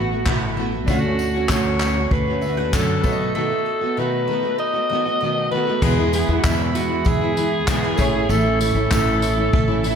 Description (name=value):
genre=acoustic pop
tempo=97 BPM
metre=4/4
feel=straight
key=E major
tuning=A4 = 441 Hz
part: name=growling alto saxophone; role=melody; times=0.0-10.0 s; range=E4 to D#5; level=-23 LUFS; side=left 1 dB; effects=slapback echo, ping-pong delay
part: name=nylon-string guitar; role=accompaniment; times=0.0-10.0 s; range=E2 to F#4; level=-23 LUFS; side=equal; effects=double-tracked left and right
part: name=mandolin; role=arpeggios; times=0.0-10.0 s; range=G#3 to F#5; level=-29 LUFS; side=right 7 dB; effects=slapback echo, ping-pong delay
part: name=upright bass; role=bass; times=0.0-10.0 s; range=A1 to F#2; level=-23 LUFS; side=equal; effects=none
part: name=jazz brush drum kit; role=drums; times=0.3-10.0 s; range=crash cymbal, handclaps, kick drum, tambourine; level=-23 LUFS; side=equal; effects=none
part: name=bright grand piano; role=accompaniment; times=0.9-10.0 s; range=G#3 to F#5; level=-32 LUFS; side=left 3 dB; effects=slapback echo
part: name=tambourine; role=percussion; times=0.9-10.0 s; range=none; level=-39 LUFS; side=left 7 dB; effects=none
room=moderate scoring stage reverb, RT60 1.4 s, small room ambience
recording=big arena sound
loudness=-17 LUFS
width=side -7 dB against mid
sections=0.0-5.8 A section; 5.8-10.0 B section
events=none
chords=0.0 B7sus4; 0.9 Dmaj7; 3.0 B7; 5.8 E; 8.0 A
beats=0.26 | 0.88 1.50 2.12 2.73 | 3.35 3.97 4.59 5.21 | 5.82 6.44 7.06 7.68 | 8.30 8.92 9.53